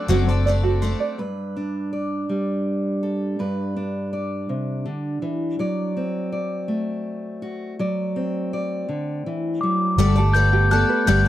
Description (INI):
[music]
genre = folk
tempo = 54 BPM (dotted quarters)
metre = 6/8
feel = straight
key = G major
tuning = A4 = 440 Hz
[part]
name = glockenspiel with rubber mallets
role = melody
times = 0.0-0.4, 9.6-11.3 s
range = D6 to G6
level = -23 LUFS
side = left 3 dB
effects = none
[part]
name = picked twelve-string acoustic guitar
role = accompaniment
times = 0.0-1.2, 10.0-11.3 s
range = F#2 to D5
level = -23 LUFS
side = left 3 dB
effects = none
[part]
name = rich studio string section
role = sustained chords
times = 0.0-1.1 s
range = F#3 to D4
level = -38 LUFS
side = equal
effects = none
[part]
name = tenor ukulele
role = arpeggios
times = 0.0-1.2, 10.0-11.3 s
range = F#4 to D5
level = -24 LUFS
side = right 6 dB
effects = none
[part]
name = vintage muted fingered electric bass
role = bass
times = 0.1-0.9, 10.0-11.3 s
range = F#1 to G1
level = -18 LUFS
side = equal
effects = none
[part]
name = fingerpicked steel-string acoustic guitar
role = accompaniment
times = 1.2-10.2 s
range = G2 to D5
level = -24 LUFS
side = equal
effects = none
[sound]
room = light reverb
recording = dry, close 1970s-style studio recording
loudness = -21 LUFS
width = side -13 dB against mid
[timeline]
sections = 0.0-1.2 A section; 1.2-10.0 B section; 10.0-11.3 A section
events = none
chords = 0.0 D7/F#; 1.2 G; 5.6 D7/F#; 10.0 Gadd9